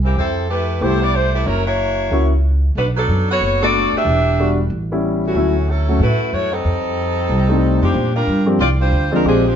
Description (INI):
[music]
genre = jazz, big band swing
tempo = 185 BPM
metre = 4/4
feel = swing 62% on 8ths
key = unclear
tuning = A4 = 440 Hz
[part]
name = warm saxophone section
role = melody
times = 0.0-9.6 s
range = E3 to E5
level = -19 LUFS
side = equal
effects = none
[part]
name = upright bass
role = bass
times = 0.0-9.5 s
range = E1 to Bb2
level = -18 LUFS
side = equal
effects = none
[part]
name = warm grand piano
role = accompaniment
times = 0.8-9.4 s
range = F3 to G4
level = -20 LUFS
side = left 2 dB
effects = none
[sound]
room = moderate stone room reverb, RT60 1.1 s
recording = band playing live in one room, nothing above 7.6 kHz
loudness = -15 LUFS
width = side -8 dB against mid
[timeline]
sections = 0.0-7.9 A section; 7.9-9.6 B section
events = none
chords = 0.2 Fmaj9#11; 1.5 F#7; 2.8 Bm7; 4.1 Em7; 4.7 A7; 5.4 Dmaj9; 6.6 F9; 7.9 Bb69